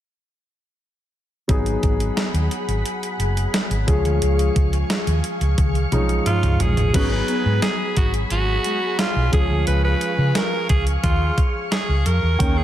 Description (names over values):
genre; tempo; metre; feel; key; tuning
1980s-style pop; 88 BPM; 4/4; straight; G# dorian; A4 = 439 Hz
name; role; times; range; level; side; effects
warm grand piano; accompaniment; 1.5-12.6 s; D#3 to G5; -26 LUFS; left 1 dB; none
ensemble organ-string; sustained chords; 1.5-12.6 s; G#4 to C#6; -29 LUFS; left 1 dB; ensemble chorus
hollow-body short-scale fingered electric bass; bass; 1.5-12.6 s; F#1 to C#3; -20 LUFS; equal; none
clean 12-bit digital drum machine; drums; 1.5-12.6 s; crash cymbal, hi-hat, kick drum, snare drum, toms; -22 LUFS; equal; none
raspy alto saxophone; melody; 6.3-12.6 s; E#4 to B4; -24 LUFS; right 1 dB; ping-pong delay
mellow synth brass; stabs; 6.9-12.5 s; G#3 to C#5; -31 LUFS; right 4 dB; chorus
room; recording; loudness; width
light reverb; none; -18 LUFS; side -12 dB against mid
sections
1.5-6.9 A section; 6.9-12.6 B section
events
drum fill 5.6-6.9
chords
1.5 G#m7; 3.9 C#; 6.9 G#m7; 9.3 C#